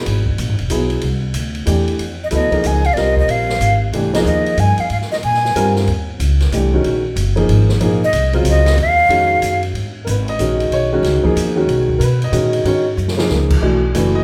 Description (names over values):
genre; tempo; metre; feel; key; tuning
modal jazz; 186 BPM; 3/4; swing 64% on 8ths; G# dorian from 9.8 s; A4 = 440 Hz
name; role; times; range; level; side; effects
warm upright piano; accompaniment; 0.0-14.2 s; Db3 to D#5; -20 LUFS; equal; none
upright bass; bass; 0.1-14.2 s; E1 to B2; -20 LUFS; equal; none
open jazz drum kit; drums; 0.1-14.0 s; crash cymbal, hi-hat, kick drum, ride cymbal, snare drum; -28 LUFS; equal; none
breathy reedy jazz flute; melody; 2.2-5.7, 8.0-9.6 s; D5 to Ab5; -19 LUFS; equal; none
room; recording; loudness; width
moderate recital hall reverb, RT60 1.4 s; recorded in a church or concert hall; -16 LUFS; mono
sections
0.0-2.0 A section; 2.0-9.8 B section; 9.8-14.2 C section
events
drum fill 13.0-13.3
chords
0.0 C#m7 (rootless); 1.0 C; 2.0 Fm11; 5.9 Ebm11; 9.8 G#m11; 13.6 Bm11